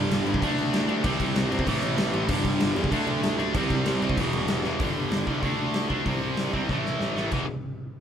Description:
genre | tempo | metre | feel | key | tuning
punk rock | 192 BPM | 4/4 | straight | E minor | A4 = 440 Hz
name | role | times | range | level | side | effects
distorted electric guitar | riff | 0.0-7.5 s | E2 to D4 | -30 LUFS | left 8 dB | overdrive
distorted electric guitar | riff | 0.0-7.5 s | E2 to D4 | -29 LUFS | right 8 dB | distortion
fuzz guitar | riff | 0.0-4.8 s | G2 to E4 | -33 LUFS | right 1 dB | none
fuzz picked electric bass | bass | 0.0-7.5 s | E1 to E2 | -32 LUFS | equal | overdrive
big rock drum kit | drums | 0.1-7.4 s | crash cymbal, hi-hat, kick drum, snare drum | -28 LUFS | equal | none
room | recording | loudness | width
light reverb | band playing live in one room | -23 LUFS | side -8 dB against mid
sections
0.0-4.8 A section; 4.8-7.3 B section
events
drum fill 4.6, 6.7-7.3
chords
0.4 D; 1.0 C; 1.7 Am; 2.3 G; 2.9 D; 3.5 C; 4.2 Em; 4.8 G5; 5.4 D5; 6.1 C5; 6.7 A5; 7.3 E5

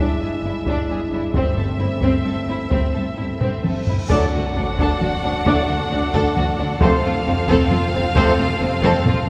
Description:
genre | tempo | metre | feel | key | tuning
cinematic, epic orchestral film score | 133 BPM | 3/4 | straight | unclear | A4 = 440 Hz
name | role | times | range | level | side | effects
rich studio violin section | melody | 0.0-9.3 s | E5 to F#5 | -30 LUFS | equal | none
warm symphonic violin section | second line | 0.0-9.2 s | C4 to A4 | -29 LUFS | equal | none
warm symphonic viola section | accompaniment | 0.0-9.1 s | C4 to D4 | -28 LUFS | equal | none
dark French horn section | sustained chords | 0.0-8.3 s | G#3 to A4 | -31 LUFS | equal | none
rich symphonic cello section | bass | 0.0-9.1 s | D2 to G2 | -28 LUFS | equal | none
rich symphonic double bass section | bass | 0.0-9.3 s | F1 to D2 | -28 LUFS | equal | none
solo taiko drums | drums | 0.7-9.3 s | none | -26 LUFS | equal | none
timpani | percussion | 1.3-2.0 s | G2 | -34 LUFS | equal | none
cymbal swell and sub drop | sound effects | 3.7-5.5 s | none | -36 LUFS | equal | none
clear studio string section | sustained chords | 4.1-9.3 s | C4 to F5 | -30 LUFS | equal | none
warm trombone section | sustained chords | 4.1-8.3 s | none | barely audible | none | none
warm trumpet section | stabs | 4.1-8.3 s | C5 to D5 | -31 LUFS | equal | none
room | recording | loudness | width
wet cathedral reverb, RT60 6.0 s | recorded in a church or concert hall | -19 LUFS | mono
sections
0.0-4.1 A section; 4.1-9.3 B section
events
drum fill 3.4-4.1, 8.8-9.3; cymbal swell 3.7-4.1; impact 4.1-5.5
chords
0.0 E7/G; 1.3 Am/G; 4.1 D; 6.8 F

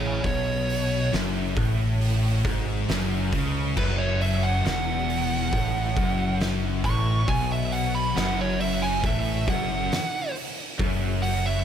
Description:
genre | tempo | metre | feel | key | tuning
stoner and doom metal | 68 BPM | 4/4 | straight | unclear | A4 = 440 Hz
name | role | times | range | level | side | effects
fuzz lead guitar | melody | 0.0-11.6 s | G#4 to C#6 | -28 LUFS | right 3 dB | distortion, analog delay
thick fuzz guitar | riff | 0.0-11.6 s | E2 to C#3 | -30 LUFS | left 8 dB | distortion
thick fuzz guitar | riff | 0.0-11.6 s | E2 to C#3 | -29 LUFS | right 6 dB | distortion
tight distorted guitar | riff | 0.0-11.6 s | E2 to C#3 | -32 LUFS | left 2 dB | distortion
fretless electric bass | bass | 0.0-11.6 s | E1 to C#2 | -30 LUFS | equal | overdrive
oversized low-tuned drum kit | drums | 0.2-11.4 s | crash cymbal, hi-hat, kick drum, snare drum | -30 LUFS | equal | none
room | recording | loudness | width
small room ambience | none | -22 LUFS | side -9 dB against mid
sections
0.0-11.6 A section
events
lead electric guitar solo 0.0-11.6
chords
0.0 F#5

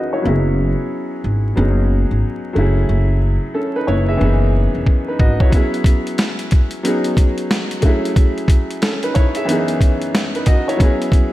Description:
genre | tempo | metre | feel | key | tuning
hip hop, boom-bap hip-hop | 91 BPM | 4/4 | swing 63% on 16ths | F# dorian | A4 = 438 Hz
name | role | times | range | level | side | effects
clear upright piano | accompaniment | 0.0-11.3 s | F#2 to E5 | -19 LUFS | equal | high-pass filter, low-pass filter
upright bass | bass | 0.3-5.4 s | E1 to G#1 | -16 LUFS | equal | none
boom bap sampler-style drum kit | drums | 4.9-11.3 s | hi-hat, kick drum, snare drum | -15 LUFS | equal | none
room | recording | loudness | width
light reverb, small room reverb | vinyl crackle | -14 LUFS | side -16 dB against mid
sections
0.0-5.5 A section; 5.5-11.3 B section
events
filter sweep on upright piano 0.0-5.5; drum fill 4.9-5.5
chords
0.2 E69/F#; 1.6 C#7sus4/F#; 2.6 F#m7; 4.2 C#m7; 5.5 E69/F#; 6.8 C#7sus4/F#; 7.8 F#m7; 9.5 C#m7/F#; 10.8 E69/F#

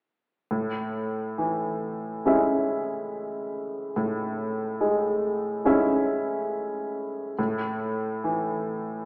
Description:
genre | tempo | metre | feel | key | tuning
classical | 70 BPM | 4/4 | rubato | A major | A4 = 440 Hz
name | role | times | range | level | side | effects
clear baby grand piano | accompaniment | 0.5-9.1 s | A2 to E5 | -28 LUFS | equal | none
room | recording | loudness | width
wet recital hall reverb, RT60 1.7 s | recorded in a church or concert hall, AM radio sound | -28 LUFS | mono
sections
0.5-9.1 A section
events
none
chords
0.5 Amaj7

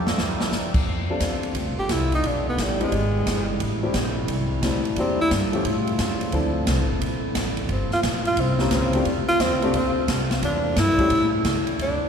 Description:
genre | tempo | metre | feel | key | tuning
jazz, big band swing | 176 BPM | 4/4 | swing 65% on 8ths | F major | A4 = 438 Hz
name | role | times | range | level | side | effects
muted trombone section | second line | 0.0-0.7 s | G3 to F4 | -36 LUFS | right 2 dB | none
upright bass | bass | 0.0-12.1 s | F1 to A2 | -26 LUFS | equal | none
swinging big-band drum kit | drums | 0.1-11.9 s | crash cymbal, hi-hat, kick drum, ride cymbal, snare drum | -27 LUFS | equal | none
mellow trombone section | sustained chords | 0.9-12.1 s | C3 to F4 | -32 LUFS | equal | none
warm baby grand piano | accompaniment | 1.1-11.1 s | F3 to A4 | -28 LUFS | left 2 dB | none
warm tenor saxophone | melody | 1.8-5.3, 7.7-12.1 s | G3 to G4 | -24 LUFS | equal | none
room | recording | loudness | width
wet cathedral reverb, RT60 6.6 s | recorded in a church or concert hall | -20 LUFS | side -7 dB against mid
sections
0.9-11.8 A section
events
drum fill 0.0-0.5; tenor saxophone solo 0.9-12.1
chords
0.2 Em9b5; 0.9 F6; 2.2 Bm7b5; 2.9 E7alt; 3.6 Am7; 5.0 Em7b5; 5.6 A7b13; 6.3 Dm9; 7.7 Gm11; 8.4 C7b9; 9.1 F6; 10.4 Em7b5; 11.1 A7

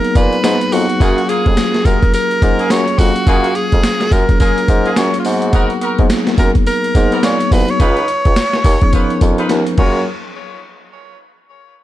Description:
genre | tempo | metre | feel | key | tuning
R&B, new jack swing | 106 BPM | 4/4 | swing 60% on 16ths | F# major | A4 = 445 Hz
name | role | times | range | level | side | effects
bright tenor saxophone | melody | 0.0-10.0 s | E#4 to C#5 | -18 LUFS | equal | none
mellow tine electric piano | accompaniment | 0.0-10.1 s | E#3 to E#5 | -19 LUFS | left 1 dB | medium stereo tremolo
boom bap sampler-style drum kit | drums | 0.0-9.9 s | crash cymbal, hi-hat, kick drum, snare drum, tambourine | -14 LUFS | equal | none
warm bassoon | bass | 0.2-10.0 s | B#1 to A#2 | -18 LUFS | equal | none
warm horn section | stabs | 1.0-10.0 s | A#3 to B4 | -24 LUFS | right 1 dB | ping-pong delay
room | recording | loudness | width
light reverb, digital ambience | dark, warm production | -11 LUFS | side -14 dB against mid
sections
0.0-10.1 A section; 10.1-11.8 B section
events
drum fill 9.5-10.1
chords
0.0 G#m9; 1.0 F#maj9; 5.2 G#m9; 7.8 C#9; 9.8 F#maj9; 10.1 N.C.

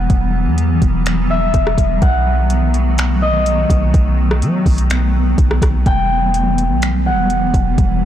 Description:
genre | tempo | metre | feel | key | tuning
hip hop, atmospheric cloud-rap | 125 BPM | 4/4 | half-time | E harmonic minor | A4 = 441 Hz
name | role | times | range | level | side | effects
concert harp | melody | 0.0-8.1 s | D#5 to G5 | -20 LUFS | left 2 dB | digital delay
granular cloud pad | sustained chords | 0.0-8.1 s | D#3 to B3 | -19 LUFS | equal | built-in reverb, sidechain pumping
long sustained 808-style bass | bass | 0.0-8.1 s | E1 to F#3 | -16 LUFS | equal | none
smooth R&B drum kit | drums | 0.1-7.9 s | finger snaps, hi-hat, kick drum, rim click | -16 LUFS | equal | overdrive, soft clipping on snare
room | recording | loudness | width
little or no reverb | blown-out, overdriven recording, overdrive | -12 LUFS | side -11 dB against mid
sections
0.0-8.1 A section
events
none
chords
0.0 Emadd9; 2.0 B7; 5.9 Emadd9

